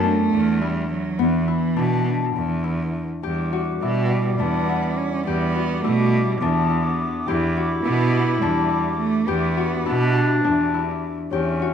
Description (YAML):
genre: contemporary instrumental, chamber music in an uneven meter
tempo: 207 BPM (eighths)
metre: 7/8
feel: straight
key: E dorian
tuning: A4 = 439 Hz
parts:
  - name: rich cello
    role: melody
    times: 0.0-10.4 s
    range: E3 to C#4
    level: -25 LUFS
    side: right 6 dB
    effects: none
  - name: Celtic harp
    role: arpeggios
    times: 0.0-11.7 s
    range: B3 to G4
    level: -25 LUFS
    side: left 8 dB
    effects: none
  - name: bright cello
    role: bass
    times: 0.0-11.7 s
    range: E2 to B2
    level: -23 LUFS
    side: right 1 dB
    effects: none
  - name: warm clarinet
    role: second line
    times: 3.2-11.7 s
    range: G3 to E4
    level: -26 LUFS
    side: equal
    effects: none
  - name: dark woodwind section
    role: sustained chords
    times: 3.2-11.7 s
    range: G4 to D6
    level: -32 LUFS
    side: equal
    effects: none
  - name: large celesta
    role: texture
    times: 3.8-5.5, 11.3-11.7 s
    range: C#5 to G5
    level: -31 LUFS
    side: left 5 dB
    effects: none
room: moderate recital hall reverb, RT60 1.3 s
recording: minimal, uncompressed stereo recording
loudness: -19 LUFS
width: side -8 dB against mid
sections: 0.0-3.2 A section; 3.2-11.7 B section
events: none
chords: 0.0 Bm/E; 1.2 E5; 3.2 Em7